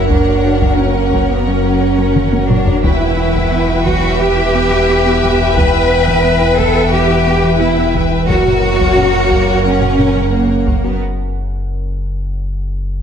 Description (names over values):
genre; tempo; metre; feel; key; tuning
cinematic, hybrid orchestral and electronic film score; 88 BPM; 4/4; straight; unclear; A4 = 442 Hz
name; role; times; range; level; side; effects
warm symphonic violin section; melody; 0.0-11.0 s; F#5 to G5; -24 LUFS; left 5 dB; none
warm symphonic violin section; second line; 0.0-11.0 s; C#5 to E5; -23 LUFS; left 6 dB; none
rich symphonic viola section; accompaniment; 0.0-11.0 s; A#4 to B4; -22 LUFS; right 3 dB; none
deep dark ambient pad; sustained chords; 0.0-11.0 s; C#3 to F#5; -23 LUFS; left 1 dB; chorus, built-in reverb
mellow French horn section; sustained chords; 0.0-11.0 s; F#3 to B4; -22 LUFS; left 5 dB; none
mellow trombone section; sustained chords; 0.0-11.0 s; E3 to B3; -24 LUFS; right 3 dB; none
thumb-piano-like synth pluck; arpeggios; 0.0-10.9 s; E3 to F#4; -22 LUFS; right 3 dB; chorus
rich symphonic cello section; bass; 0.0-11.0 s; A#3 to B4; -16 LUFS; right 1 dB; none
rich symphonic double bass section; bass; 0.0-11.0 s; E2 to F#2; -20 LUFS; right 4 dB; none
saturated sub bass; bass; 0.0-13.0 s; E1 to F#1; -20 LUFS; left 1 dB; none
taiko ensemble; drums; 0.1-11.0 s; none; -19 LUFS; left 1 dB; none
room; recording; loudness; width
moderate scoring stage reverb, RT60 1.7 s; none; -11 LUFS; side -8 dB against mid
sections
0.0-13.0 A section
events
drum fill 2.2-2.8; break 11.0-13.0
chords
0.0 F#; 2.8 Em; 8.3 F#